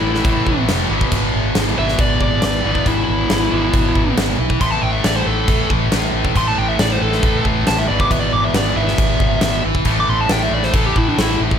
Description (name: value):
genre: hard rock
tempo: 137 BPM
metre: 4/4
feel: straight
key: unclear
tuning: A4 = 438 Hz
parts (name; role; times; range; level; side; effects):
- dark smooth lead guitar; melody; 0.0-11.4 s; D4 to D6; -21 LUFS; equal; overdrive, slapback echo
- distorted electric guitar; riff; 0.0-11.6 s; E2 to A3; -23 LUFS; right 14 dB; overdrive
- high-gain distorted guitar; riff; 0.0-11.6 s; E2 to A3; -22 LUFS; left 15 dB; distortion
- vintage muted fingered electric bass; bass; 0.0-11.6 s; F1 to B1; -22 LUFS; equal; none
- huge arena drum kit; drums; 0.1-11.6 s; crash cymbal, kick drum, snare drum; -19 LUFS; equal; none
room: small room reverb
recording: none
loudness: -14 LUFS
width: side -8 dB against mid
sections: 0.0-11.6 A section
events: lead electric guitar solo 0.0-11.6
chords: 0.0 A5; 0.9 E/G#; 4.6 A5; 7.9 E/G#; 9.9 A5